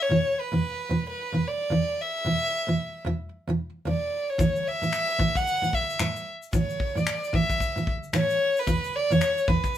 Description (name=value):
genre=acoustic pop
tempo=112 BPM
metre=4/4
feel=swing 60% on 16ths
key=A major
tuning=A4 = 440 Hz
part: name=warm violin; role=melody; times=0.0-9.8 s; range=B4 to F#5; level=-26 LUFS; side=equal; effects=none
part: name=fingerpicked steel-string acoustic guitar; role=accompaniment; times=0.1-9.7 s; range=E2 to E3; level=-26 LUFS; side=right 1 dB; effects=none
part: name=modern studio drum kit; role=drums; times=4.4-9.8 s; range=finger snaps, kick drum, shaker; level=-29 LUFS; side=left 1 dB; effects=none
room=moderate studio reverb, RT60 0.5 s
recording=minimal, uncompressed stereo recording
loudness=-24 LUFS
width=side -11 dB against mid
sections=0.0-9.8 A section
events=none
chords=0.1 E5; 4.4 A5; 8.7 E5